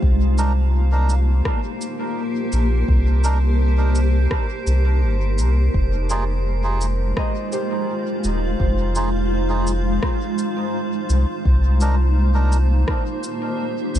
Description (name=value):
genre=ambient dub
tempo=84 BPM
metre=4/4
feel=straight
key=F dorian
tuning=A4 = 440 Hz
part: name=granular cloud pad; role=sustained chords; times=0.0-14.0 s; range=Ab3 to F5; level=-25 LUFS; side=equal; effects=built-in reverb
part: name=Celtic harp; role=arpeggios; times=0.0-10.8 s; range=G4 to Eb5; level=-34 LUFS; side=equal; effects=dub echo
part: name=soft dub sub bass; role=bass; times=0.0-14.0 s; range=Eb1 to C2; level=-17 LUFS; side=equal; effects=none
part: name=electronic kick drum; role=drums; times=0.0-13.0 s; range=none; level=-22 LUFS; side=equal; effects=small room ambience
part: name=drifting glass-harmonics texture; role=texture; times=0.0-14.0 s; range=C5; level=-33 LUFS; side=right 3 dB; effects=chorus, built-in reverb
part: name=melodica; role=stabs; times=0.4-12.6 s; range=D4 to Bb4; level=-30 LUFS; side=right 2 dB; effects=dub echo
part: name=electronic shaker and rim click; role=drums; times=0.4-14.0 s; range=none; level=-32 LUFS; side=equal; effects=small room ambience, dub echo
room=digital ambience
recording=nothing above 11.0 kHz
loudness=-17 LUFS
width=side -12 dB against mid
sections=0.0-14.0 A section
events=none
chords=0.0 Cm9; 5.7 Fm7; 11.5 Cm9